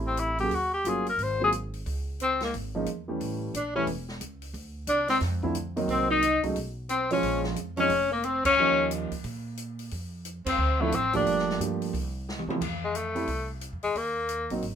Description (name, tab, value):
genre	jazz, small-group swing and bop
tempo	179 BPM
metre	4/4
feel	swing 63% on 8ths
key	unclear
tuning	A4 = 440 Hz
part	dark concert grand piano	accompaniment	0.0-14.6 s	D3 to C5	-30 LUFS	right 3 dB	none
part	upright bass	bass	0.0-14.8 s	E1 to C3	-34 LUFS	right 1 dB	none
part	clear tenor saxophone	melody	0.1-14.5 s	Ab3 to C5	-25 LUFS	left 3 dB	none
part	open jazz drum kit	drums	0.2-14.7 s	crash cymbal, hi-hat, kick drum, snare drum, toms	-38 LUFS	left 1 dB	none
part	clear alto saxophone	second line	2.2-11.6 s	A3 to Eb4	-31 LUFS	right 5 dB	none
room	light reverb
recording	minimal, uncompressed stereo recording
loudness	-25 LUFS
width	side -8 dB against mid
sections	0.0-1.9 A section; 1.9-12.6 B section; 12.6-14.8 A section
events	band accent 8.4, 10.4; drum fill 12.3-12.6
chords	0.0 Fmaj7 (rootless); 0.5 Ebm7; 1.2 Ab13; 1.9 Db5; 3.2 A7; 4.5 Dm7; 5.9 Cm7b5; 6.6 Bsus2; 7.2 Bbm9; 8.6 Eb9; 9.9 Cadd11; 10.6 Dm9; 11.3 Gm9; 11.9 C; 13.9 Ebm